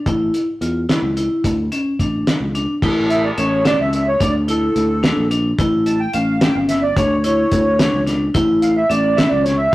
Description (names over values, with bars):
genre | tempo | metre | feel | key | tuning
progressive instrumental, band music in an uneven meter | 217 BPM (eighths) | 5/8 | straight | unclear | A4 = 440 Hz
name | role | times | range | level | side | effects
vibraphone with hard mallets | arpeggios | 0.1-9.7 s | C#4 to F4 | -19 LUFS | left 1 dB | none
sustaining fretless electric bass | bass | 0.1-9.7 s | G1 to E2 | -21 LUFS | equal | none
cloth-damped thuddy drum kit | drums | 0.1-9.7 s | crash cymbal, hi-hat, kick drum, snare drum | -20 LUFS | equal | none
accordion | melody | 3.1-9.7 s | A4 to A5 | -19 LUFS | right 1 dB | light tremolo tuning
room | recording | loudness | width
light reverb | rough rehearsal-room recording, warm saturation | -15 LUFS | side -17 dB against mid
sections
0.0-2.8 A section; 2.8-9.7 B section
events
accordion solo 2.8-9.7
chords
0.1 A; 1.4 D5; 2.8 A; 4.2 D5; 5.6 A; 7.0 C#m; 8.3 A